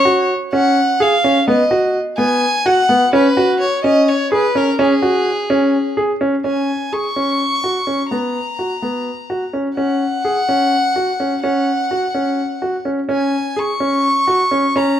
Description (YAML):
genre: contemporary instrumental, contemporary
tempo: 253 BPM (eighths)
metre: 7/8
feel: straight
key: unclear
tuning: A4 = 440 Hz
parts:
  - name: rich violin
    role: melody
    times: 0.0-15.0 s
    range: Ab4 to Db6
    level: -17 LUFS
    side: left 1 dB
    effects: none
  - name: clear grand piano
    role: arpeggios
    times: 0.1-15.0 s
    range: B3 to Ab4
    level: -16 LUFS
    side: equal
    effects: none
room: moderate recital hall reverb, RT60 1.4 s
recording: close, detailed microphones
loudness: -14 LUFS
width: side -10 dB against mid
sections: 0.0-6.5 A section; 6.5-15.0 B section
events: none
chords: 0.0 Gb5; 1.5 B; 3.1 Dbsus4; 8.1 B5; 9.8 Dbsus4